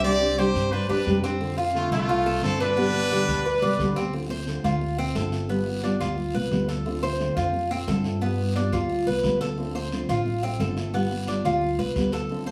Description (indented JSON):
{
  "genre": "latin, Cuban son and guajira",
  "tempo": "176 BPM",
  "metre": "4/4",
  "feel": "straight",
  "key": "unclear",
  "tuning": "A4 = 440 Hz",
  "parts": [
    { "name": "brilliant trumpet", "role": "melody", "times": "0.0-3.9 s", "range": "F4 to D5", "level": "-28 LUFS", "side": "equal", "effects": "none" },
    { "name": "growling trumpet", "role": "second line", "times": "0.0-3.9 s", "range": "A3 to G4", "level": "-35 LUFS", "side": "equal", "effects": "none" },
    { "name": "nylon-string guitar", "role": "accompaniment", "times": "0.0-12.5 s", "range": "B2 to G4", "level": "-30 LUFS", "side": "equal", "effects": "none" },
    { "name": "Cuban tres", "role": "arpeggios", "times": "0.0-12.5 s", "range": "B3 to C5", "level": "-30 LUFS", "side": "equal", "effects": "none" },
    { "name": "upright bass", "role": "bass", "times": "0.0-12.5 s", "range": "G1 to G2", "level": "-31 LUFS", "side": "equal", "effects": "none" },
    { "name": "guiro", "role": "percussion", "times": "0.0-12.5 s", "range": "none", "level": "-44 LUFS", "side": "equal", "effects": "none" }
  ],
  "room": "wet studio reverb, RT60 0.8 s",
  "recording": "heard from further back in the room, small room ambience",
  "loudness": "-25 LUFS",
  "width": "mono",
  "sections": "0.0-4.1 A section; 4.1-12.5 B section",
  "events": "none",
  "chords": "0.0 Csus2; 1.4 F6; 2.8 G; 4.1 Dm7; 5.5 G7; 6.9 Dm7; 8.2 G7; 9.6 Dm7; 10.9 G7"
}